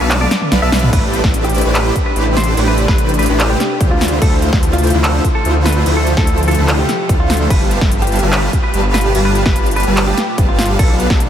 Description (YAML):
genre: future bass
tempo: 146 BPM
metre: 4/4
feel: half-time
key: A minor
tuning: A4 = 440 Hz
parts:
  - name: clean electric guitar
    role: melody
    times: 0.0-10.9 s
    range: F4 to E5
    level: -21 LUFS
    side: equal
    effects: analog chorus, sidechain pumping, analog delay
  - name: shimmering ambient pad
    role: sustained chords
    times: 0.0-11.3 s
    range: B2 to E5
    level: -26 LUFS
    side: equal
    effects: chorus, built-in reverb, phaser, sidechain pumping
  - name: supersaw chords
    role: riff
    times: 0.0-11.3 s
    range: D3 to B5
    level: -18 LUFS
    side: equal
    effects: lush chorus, sidechain pumping, ping-pong delay
  - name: wide detuned saw bass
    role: bass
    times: 0.0-11.3 s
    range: G1 to D2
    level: -16 LUFS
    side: equal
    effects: chorus, sidechain pumping
  - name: big-room dance drum kit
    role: drums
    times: 0.1-11.3 s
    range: crash cymbal, handclaps, hi-hat, snare drum, toms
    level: -19 LUFS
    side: equal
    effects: overdrive
  - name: electronic kick drum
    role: drums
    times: 0.9-11.2 s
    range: none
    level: -14 LUFS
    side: equal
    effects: overdrive
room: moderate huge ambient reverb, RT60 7.4 s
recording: dreamy mix soaked in reverb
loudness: -11 LUFS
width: side -10 dB against mid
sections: 0.0-11.3 A section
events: kick drops out 0.1-0.9; drum fill 0.1-0.9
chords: 0.0 Bm7b5; 0.9 Am11; 4.0 Dm9; 7.5 G9; 10.8 Bm7b5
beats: 0.11 0.52 | 0.93 1.34 1.75 2.16 | 2.57 2.98 3.39 3.81 | 4.22 4.63 5.04 5.45 | 5.86 6.27 6.68 7.09 | 7.50 7.92 8.33 8.74 | 9.15 9.56 9.97 10.38 | 10.79 11.20